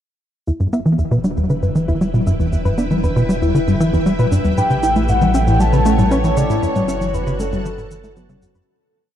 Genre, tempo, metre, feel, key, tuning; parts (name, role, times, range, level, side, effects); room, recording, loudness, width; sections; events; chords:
ambient, sequencer-driven space music; 117 BPM; 4/4; straight; E dorian; A4 = 440 Hz
string machine, full ensemble; sustained chords; 0.5-8.7 s; A3 to A5; -26 LUFS; equal; ensemble chorus
soft round pluck; arpeggios; 0.5-8.7 s; E3 to E5; -24 LUFS; left 2 dB; chorus, auto-pan, tape echo
tight sequencer bass; riff; 0.5-8.6 s; E2 to E4; -17 LUFS; equal; tape echo
warm sub bass; bass; 0.5-8.7 s; E1 to A1; -23 LUFS; equal
electronic shaker and toms; percussion; 0.5-8.7 s; -26 LUFS; left 5 dB; tape echo
pulse-width lead; melody; 4.6-8.4 s; A4 to A5; -20 LUFS; equal; chorus, tape echo
moderate huge ambient reverb, RT60 7.4 s; dark, warm production; -14 LUFS; side -10 dB against mid
0.5-8.7 A section
fade-in on string machine 0.5-8.7; fade-in on sub bass 0.5-8.7; fade-in on drum 0.5-8.7; fade-out 5.9-8.7
0.5 Em; 4.6 Aadd9; 6.6 F#m